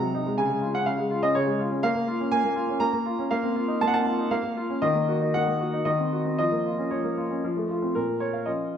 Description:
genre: classical-period piano sonatina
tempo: 112-124 BPM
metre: 3/4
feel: rubato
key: Bb minor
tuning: A4 = 437 Hz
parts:
  - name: clear concert grand piano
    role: solo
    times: 0.0-8.8 s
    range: Bb2 to Bb5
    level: -23 LUFS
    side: equal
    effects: none
room: wet recital hall reverb, RT60 1.5 s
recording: none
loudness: -23 LUFS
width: side -8 dB against mid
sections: 0.0-8.0 A section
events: none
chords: 0.4 Db; 1.8 Bbm; 3.3 F5/Bb; 4.3 Bbm; 4.8 Ebm; 5.9 Cdim/Eb; 6.4 Bbm/F; 7.4 F; 8.0 Bbm

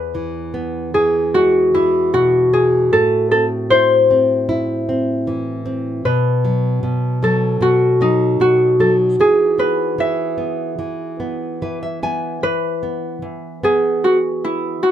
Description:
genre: children's music, lullaby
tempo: 76 BPM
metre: 4/4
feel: rubato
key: E major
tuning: A4 = 441 Hz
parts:
  - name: Celtic harp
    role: melody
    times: 0.0-14.9 s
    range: D#4 to E5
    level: -15 LUFS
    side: equal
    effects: none
  - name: nylon-string guitar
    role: accompaniment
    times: 0.0-14.9 s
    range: E2 to G#5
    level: -21 LUFS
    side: right 1 dB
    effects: none
room: moderate studio ambience, RT60 0.5 s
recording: band playing live in one room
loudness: -14 LUFS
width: side -10 dB against mid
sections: 0.0-12.4 A section; 12.4-14.9 A section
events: nylon-string guitar fill 11.2-12.4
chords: 0.0 E; 2.9 Am; 6.0 B5; 9.2 E5

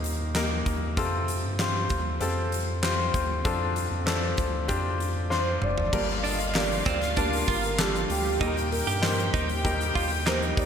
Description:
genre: piano-driven pop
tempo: 97 BPM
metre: 4/4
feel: straight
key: unclear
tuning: A4 = 440 Hz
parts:
  - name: clear baby grand piano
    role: accompaniment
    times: 0.0-10.7 s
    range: G2 to A5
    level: -30 LUFS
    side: left 4 dB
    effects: none
  - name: round analog bass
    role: bass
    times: 0.0-10.7 s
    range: F1 to G2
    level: -30 LUFS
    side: right 1 dB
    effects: none
  - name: huge arena drum kit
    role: drums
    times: 0.0-10.7 s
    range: crash cymbal, handclaps, hi-hat, kick drum, snare drum, toms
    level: -29 LUFS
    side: equal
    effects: gated reverb
  - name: warm velvety synth lead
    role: melody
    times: 5.3-10.7 s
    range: G4 to Eb5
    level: -31 LUFS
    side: right 3 dB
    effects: chorus
  - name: warm studio violin section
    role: second line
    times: 5.9-10.7 s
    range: F4 to G5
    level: -32 LUFS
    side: left 2 dB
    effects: digital delay
  - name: direct-recorded clean electric guitar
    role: riff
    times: 6.2-10.7 s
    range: C4 to G4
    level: -33 LUFS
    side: right 9 dB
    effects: none
  - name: group handclap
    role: percussion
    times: 6.5-10.4 s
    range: none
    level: -39 LUFS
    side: left 1 dB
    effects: none
room: moderate lush hall reverb, RT60 1.8 s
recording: bright 1980s-style digital production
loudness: -24 LUFS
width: side -8 dB against mid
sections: 0.0-5.9 A section; 5.9-10.7 B section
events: drum fill 5.3-5.9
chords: 0.0 Eb; 1.0 Fadd9; 3.5 Dm7; 5.9 Gm; 8.4 Eb

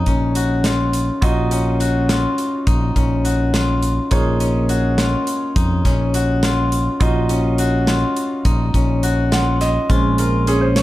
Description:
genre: progressive instrumental, band music in an uneven meter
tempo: 208 BPM (eighths)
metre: 5/8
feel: straight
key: Bb minor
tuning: A4 = 440 Hz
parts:
  - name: warm grand piano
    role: accompaniment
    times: 0.0-10.8 s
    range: Ab3 to Gb5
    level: -25 LUFS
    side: right 4 dB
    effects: none
  - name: steel-string zither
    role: arpeggios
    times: 0.0-10.8 s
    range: Db4 to Gb4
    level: -20 LUFS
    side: left 2 dB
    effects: digital delay
  - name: overdriven fingered electric bass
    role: bass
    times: 0.0-10.8 s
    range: Bb1 to F2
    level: -19 LUFS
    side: equal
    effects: none
  - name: modern studio drum kit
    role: drums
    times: 0.1-10.8 s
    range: hi-hat, kick drum, snare drum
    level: -21 LUFS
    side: equal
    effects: none
room: moderate small room reverb, RT60 0.5 s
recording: dark, warm production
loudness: -15 LUFS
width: side -16 dB against mid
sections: 0.0-9.9 A section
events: grand piano fill 9.0-9.9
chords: 0.0 Bbm7; 1.2 Ebmadd9/Bb; 4.1 Bbm7; 7.0 Ebmadd9/Bb; 9.9 Bbm7

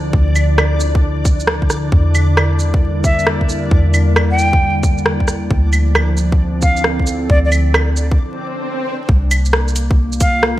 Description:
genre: future garage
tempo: 134 BPM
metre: 4/4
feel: swing 65% on 16ths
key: D minor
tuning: A4 = 441 Hz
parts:
  - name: warbly tape-like pad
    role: sustained chords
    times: 0.0-10.6 s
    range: D3 to Bb4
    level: -22 LUFS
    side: equal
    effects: chorus, built-in reverb, sidechain pumping
  - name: soft 808-style bass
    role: bass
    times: 0.0-10.6 s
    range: C2 to E2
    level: -16 LUFS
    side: equal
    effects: sidechain pumping
  - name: backwards swelling texture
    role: texture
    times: 0.0-8.2 s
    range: D4 to D5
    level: -28 LUFS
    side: left 1 dB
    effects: built-in reverb
  - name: electronic kick drum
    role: drums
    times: 0.1-10.3 s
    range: none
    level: -14 LUFS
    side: equal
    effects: studio reverb
  - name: garage drum kit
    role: drums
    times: 0.4-10.5 s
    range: claves, hi-hat, rim click, shaker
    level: -18 LUFS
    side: right 1 dB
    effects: studio reverb
  - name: breathy bright concert flute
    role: melody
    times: 3.0-7.5, 10.2-10.4 s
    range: D5 to G5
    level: -20 LUFS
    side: equal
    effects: vintage 12-bit sampler grit, tape echo
  - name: swell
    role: sound effects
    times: 8.3-9.1 s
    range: none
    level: -25 LUFS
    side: equal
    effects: none
room: light reverb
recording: vinyl crackle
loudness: -12 LUFS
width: side -15 dB against mid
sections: 0.0-9.1 A section; 9.1-10.6 B section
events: break 8.2-9.1; swell 8.3-9.1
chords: 0.0 Dm9; 1.9 Em7b5; 5.5 Dm9; 9.1 C7sus4

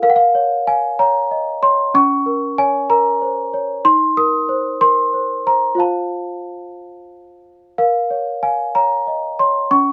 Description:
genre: classical, lullaby for celesta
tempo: 62 BPM (dotted quarters)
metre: 6/8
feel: straight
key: Bb minor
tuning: A4 = 443 Hz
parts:
  - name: worn celesta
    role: solo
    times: 0.0-9.9 s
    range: Db4 to Eb6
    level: -17 LUFS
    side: equal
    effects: none
room: light reverb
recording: dark, warm production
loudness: -17 LUFS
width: mono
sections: 0.0-9.9 A section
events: none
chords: 0.0 Bbm; 1.9 Bbm/Db; 3.8 Cm7/Eb; 5.8 F; 7.8 Bbm

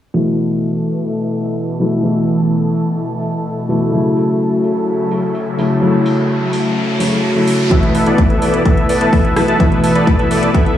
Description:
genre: EDM, festival progressive house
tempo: 127 BPM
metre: 4/4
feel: straight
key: A major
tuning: A4 = 440 Hz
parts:
  - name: felt-muted upright piano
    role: accompaniment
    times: 0.1-10.8 s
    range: B2 to F#4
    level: -16 LUFS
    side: equal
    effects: sidechain pumping
  - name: lush unison pad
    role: sustained chords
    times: 0.1-10.8 s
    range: B2 to A4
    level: -21 LUFS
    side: left 1 dB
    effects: chorus, phaser, sidechain pumping
  - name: house drum kit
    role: drums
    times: 0.4-10.8 s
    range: hi-hat, rim click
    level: -28 LUFS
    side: equal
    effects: none
  - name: riser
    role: sound effects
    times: 4.9-7.7 s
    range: none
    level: -26 LUFS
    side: left 1 dB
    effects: none
  - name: dense compressed supersaw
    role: riff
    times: 7.7-10.8 s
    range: B3 to A5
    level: -15 LUFS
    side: equal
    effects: sidechain pumping, low-pass filter, dub echo
  - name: wide detuned saw bass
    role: bass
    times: 7.7-10.8 s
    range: A1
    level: -30 LUFS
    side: left 2 dB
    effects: none
  - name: electronic kick drum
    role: drums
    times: 7.7-10.6 s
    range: none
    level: -14 LUFS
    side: equal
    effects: none
room: moderate lush hall reverb, RT60 2.4 s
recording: played on a big sound system in a bare room, stone room reverb, low-pass filter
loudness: -13 LUFS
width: side -11 dB against mid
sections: 0.2-7.7 A section; 7.7-10.8 B section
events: filter sweep 0.2-7.7; riser 4.9-7.7; build-up 7.7-10.8; filter sweep on supersaw synth 7.7-10.8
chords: 0.2 Asus2; 3.9 F#m7; 7.7 Asus2

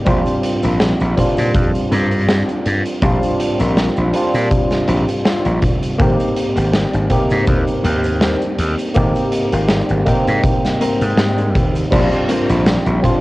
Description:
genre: vaporwave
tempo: 81 BPM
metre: 4/4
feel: swing 55% on 16ths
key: Bb mixolydian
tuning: A4 = 440 Hz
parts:
  - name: overdriven tine electric piano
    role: accompaniment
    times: 0.0-13.2 s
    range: G3 to G5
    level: -18 LUFS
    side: equal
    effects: analog chorus, cassette tape, analog delay
  - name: mellow electric guitar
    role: riff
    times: 0.1-12.7 s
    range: Bb3 to Bb4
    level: -25 LUFS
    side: left 2 dB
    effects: lush chorus, cassette tape, analog delay
  - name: gritty slap bass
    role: bass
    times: 0.1-13.0 s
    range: Ab1 to Bb2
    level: -18 LUFS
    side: equal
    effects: overdrive, tube saturation
  - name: kick drum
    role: drums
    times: 0.1-13.2 s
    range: none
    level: -20 LUFS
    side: equal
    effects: cassette tape
  - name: oversized low-tuned drum kit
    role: drums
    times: 0.1-13.2 s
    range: cabasa, crash cymbal, hi-hat, snare drum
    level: -22 LUFS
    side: equal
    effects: cassette tape
room: light reverb, small room ambience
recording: home recording on cassette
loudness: -14 LUFS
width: side -19 dB against mid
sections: 0.0-11.9 A section; 11.9-13.2 B section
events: none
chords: 0.1 Bb69; 6.0 Abmaj9; 11.9 Bb69

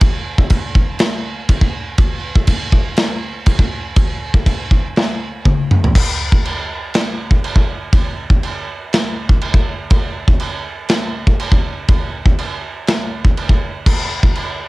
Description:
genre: metal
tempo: 121 BPM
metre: 4/4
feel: straight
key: none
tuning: none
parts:
  - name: big rock drum kit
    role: drums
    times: 0.0-14.5 s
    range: china cymbal, crash cymbal, kick drum, snare drum, toms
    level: -14 LUFS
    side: equal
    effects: none
room: little or no reverb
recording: home recording on cassette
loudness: -14 LUFS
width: side -21 dB against mid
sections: 0.0-5.9 A section; 5.9-14.7 B section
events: drum fill 5.5-5.9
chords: none

